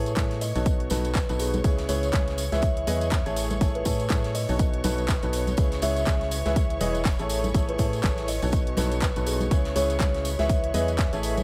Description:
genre	piano house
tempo	122 BPM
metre	4/4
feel	swing 58% on 16ths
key	unclear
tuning	A4 = 441 Hz
part	dark studio violin section	sustained chords	0.0-11.4 s	C#5 to C#6	-41 LUFS	equal	sidechain pumping
part	clear upright piano	riff	0.0-11.4 s	B2 to E5	-33 LUFS	equal	sidechain pumping, delay
part	organ-like FM bass	bass	0.0-11.4 s	E1 to A2	-32 LUFS	equal	sidechain pumping
part	ethereal airy pad	texture	2.5-11.4 s	E4 to G#5	-44 LUFS	equal	none
part	house drum kit	drums	0.1-11.4 s	handclaps, hi-hat	-37 LUFS	equal	overdrive
part	tambourine and congas	percussion	0.1-11.4 s	none	-38 LUFS	equal	none
part	electronic kick drum	drums	0.2-11.1 s	none	-27 LUFS	equal	overdrive
part	huge arena drum kit	drums	0.2-11.4 s	hi-hat, snare drum	-46 LUFS	equal	none
part	kalimba	melody	0.4-10.6 s	G#4 to E5	-34 LUFS	equal	delay
room	little or no reverb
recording	none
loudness	-25 LUFS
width	mono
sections	0.0-11.4 A section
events	none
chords	0.4 B7; 1.6 C#m7; 2.6 Amaj7; 4.3 B7; 5.6 C#m7; 6.6 Emaj7; 7.3 Amaj7; 8.3 B7; 9.5 C#m7; 10.5 Amaj7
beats	0.17 | 0.66 1.15 1.64 2.13 | 2.63 3.12 3.61 4.10 | 4.59 5.09 5.58 6.07 | 6.56 7.05 7.54 8.04 | 8.53 9.02 9.51 10.00 | 10.49 10.99

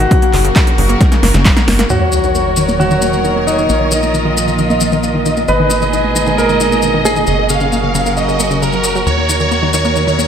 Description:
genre	uplifting trance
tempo	134 BPM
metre	4/4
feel	straight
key	Eb minor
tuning	A4 = 444 Hz
part	clear grand piano	second line	0.0-9.0 s	Eb4 to Cb5	-18 LUFS	left 1 dB	ping-pong delay
part	warm chamber string section	sustained chords	0.0-10.3 s	Bb2 to Bb4	-18 LUFS	right 1 dB	sidechain pumping
part	wide unison pluck	arpeggios	0.0-10.2 s	Db3 to Db5	-19 LUFS	left 1 dB	sidechain pumping, ping-pong delay
part	tight sequencer bass	bass	0.0-10.3 s	Gb1 to Eb2	-19 LUFS	equal	sidechain pumping
part	big-room dance drum kit	drums	0.0-1.9 s	handclaps, hi-hat, snare drum	-17 LUFS	equal	overdrive, low-pass filter on hats, low-pass filter on snare, low-pass filter on room
part	electronic kick drum	drums	0.1-1.5 s	none	-12 LUFS	equal	overdrive
part	supersaw chords	melody	1.9-10.3 s	Bb4 to F5	-17 LUFS	right 2 dB	phaser, sidechain pumping, low-pass filter, ping-pong delay
part	maracas	percussion	1.9-10.3 s	none	-22 LUFS	left 4 dB	none
part	sub drop	sound effects	1.9-3.7 s	none	-22 LUFS	equal	none
room	wet plate reverb, RT60 2.2 s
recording	dreamy mix soaked in reverb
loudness	-11 LUFS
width	side -8 dB against mid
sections	0.0-1.9 A section; 1.9-10.3 B section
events	drum fill 1.0-1.9; impact 1.9-3.7; filter sweep on supersaw synth 1.9-10.3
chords	0.1 Gb; 1.9 Ebm; 3.7 Bbsus4; 5.5 Abmadd9; 7.3 Gb; 9.1 Ebm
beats	| 0.11 0.56 1.01 1.45 | 1.90 2.35 2.80 3.25 | 3.69 4.14 4.59 5.04 | 5.48 5.93 6.38 6.83 | 7.28 7.72 8.17 8.62 | 9.07 9.51 9.96

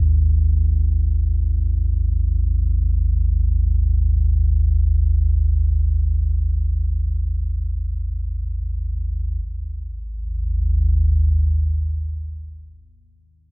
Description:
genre	ambient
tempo	free time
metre	none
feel	none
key	unclear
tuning	A4 = 440 Hz
part	deep rumbling drone	solo	0.0-12.7 s	G#1 to D#2	-18 LUFS	equal	built-in reverb, phaser
room	little or no reverb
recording	cassette tape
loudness	-18 LUFS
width	side -29 dB against mid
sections	0.0-9.4 A section; 9.4-13.5 B section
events	none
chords	0.0 G#5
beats	free time

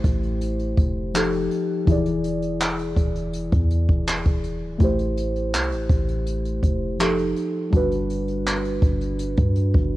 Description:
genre	contemporary R&B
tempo	82 BPM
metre	4/4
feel	straight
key	unclear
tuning	A4 = 439 Hz
part	muted felt-like synth keys	accompaniment	0.0-10.0 s	E3 to D5	-24 LUFS	left 1 dB	chorus, cassette tape
part	warm 808-style bass	bass	0.0-10.0 s	D1 to G2	-25 LUFS	equal	none
part	jazz brush drum kit	drums	0.0-9.9 s	handclaps, hi-hat, kick drum	-22 LUFS	equal	cassette tape
room	studio reverb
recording	home recording on cassette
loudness	-20 LUFS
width	side -16 dB against mid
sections	0.0-10.0 A section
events	none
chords	0.0 Am7; 1.1 F9; 1.9 E7; 4.8 Am7; 7.0 F9; 7.7 Gmaj7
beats	0.41 1.14 | 1.88 2.61 3.34 4.07 | 4.80 5.54 6.27 7.00 | 7.73 8.46 9.19 9.93

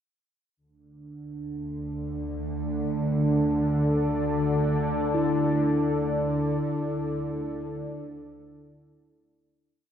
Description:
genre	dark ambient drone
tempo	free time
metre	none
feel	none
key	unclear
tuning	A4 = 440 Hz
part	deep dark ambient pad	sustained chords	1.3-9.8 s	D4 to D5	-29 LUFS	right 1 dB	chorus, built-in reverb
part	bowed-like drone	drone	1.3-9.9 s	D2 to D3	-27 LUFS	left 1 dB	built-in reverb, phaser
part	bronze singing bowl	texture	5.1-9.8 s	E4	-32 LUFS	right 2 dB	none
room	wet cathedral reverb, RT60 5.4 s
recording	dark, warm production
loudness	-24 LUFS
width	side -9 dB against mid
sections	0.6-9.8 A section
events	filter sweep on synth drone 0.6-9.8; fade-out 5.2-9.8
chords	0.6 D5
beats	free time

